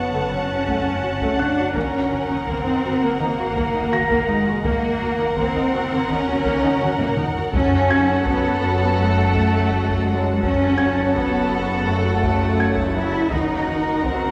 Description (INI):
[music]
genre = cinematic, suspense film score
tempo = 83 BPM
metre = 4/4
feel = straight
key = unclear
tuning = A4 = 440 Hz
[part]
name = warm studio violin section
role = melody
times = 0.0-14.3 s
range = F#5 to A5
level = -33 LUFS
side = equal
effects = none
[part]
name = warm studio violin section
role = second line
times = 0.0-14.3 s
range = A4 to F#5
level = -29 LUFS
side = equal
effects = none
[part]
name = mellow French horn section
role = sustained chords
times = 0.0-14.3 s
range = F#3 to E4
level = -28 LUFS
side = equal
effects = none
[part]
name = concert harp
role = riff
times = 0.0-14.3 s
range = F#2 to D#4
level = -30 LUFS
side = equal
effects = none
[part]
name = warm studio cello section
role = bass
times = 0.0-14.3 s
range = G#3 to E4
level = -26 LUFS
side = equal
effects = none
[part]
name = swarming drone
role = drone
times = 0.0-14.3 s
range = F#1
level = -36 LUFS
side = equal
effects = none
[part]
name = dark studio violin section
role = texture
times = 0.0-1.4 s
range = C#6 to F#6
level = -43 LUFS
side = equal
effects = none
[part]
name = felt-muted upright piano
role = texture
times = 0.0-14.3 s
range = C#5 to A#6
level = -31 LUFS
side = equal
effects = none
[part]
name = warm studio viola section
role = accompaniment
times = 0.1-14.3 s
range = A3 to F#4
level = -31 LUFS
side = equal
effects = none
[part]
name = warm studio double bass section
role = bass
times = 0.1-14.3 s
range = D#2 to F#2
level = -29 LUFS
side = equal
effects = none
[part]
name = taiko ensemble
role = drums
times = 0.7-14.3 s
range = none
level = -32 LUFS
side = equal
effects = none
[part]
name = timpani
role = percussion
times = 7.5-8.6 s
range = F#2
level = -34 LUFS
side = equal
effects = none
[sound]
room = wet scoring stage reverb, RT60 1.8 s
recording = heard from further back in the room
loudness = -20 LUFS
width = mono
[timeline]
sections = 0.0-14.3 A section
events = drum fill 6.8-7.5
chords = 0.0 F#m; 1.8 D#m/F#; 7.5 F#m; 13.3 D#m/F#